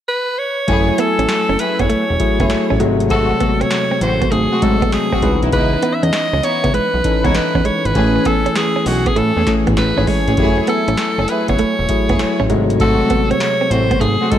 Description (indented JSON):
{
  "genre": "R&B, new jack swing",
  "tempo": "99 BPM",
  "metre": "4/4",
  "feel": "swing 67% on 16ths",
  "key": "F# dorian",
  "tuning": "A4 = 441 Hz",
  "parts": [
    { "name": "edgy alto saxophone", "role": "melody", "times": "0.1-14.4 s", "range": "F#4 to E5", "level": "-19 LUFS", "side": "equal", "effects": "slapback echo" },
    { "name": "bell-like tine electric piano", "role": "accompaniment", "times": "0.7-14.4 s", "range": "B#2 to G#5", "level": "-20 LUFS", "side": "left 4 dB", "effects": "wide subtle chorus, slapback echo" },
    { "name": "warm studio string section", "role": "stabs", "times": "0.7-14.4 s", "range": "A3 to G#4", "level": "-23 LUFS", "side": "right 1 dB", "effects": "none" },
    { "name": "fat analog bass", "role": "bass", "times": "0.7-14.4 s", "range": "E1 to A2", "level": "-19 LUFS", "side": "equal", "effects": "none" },
    { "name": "booming analog drum machine", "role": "drums", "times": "0.7-14.4 s", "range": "hi-hat, kick drum, snare drum", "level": "-21 LUFS", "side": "equal", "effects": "none" },
    { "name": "direct-recorded clean electric guitar", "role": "riff", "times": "0.9-14.2 s", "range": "G#3 to C#4", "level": "-23 LUFS", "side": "right 4 dB", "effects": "wide subtle chorus, slapback echo" }
  ],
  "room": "moderate lush hall reverb, RT60 2.6 s",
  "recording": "big arena sound",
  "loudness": "-13 LUFS",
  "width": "side -10 dB against mid",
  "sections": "0.7-14.4 A section",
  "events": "none",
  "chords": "0.0 N.C.; 0.7 F#m9; 2.8 G#7b9; 5.2 C#m9; 8.0 Amaj7; 10.4 F#m9; 12.5 G#7b9"
}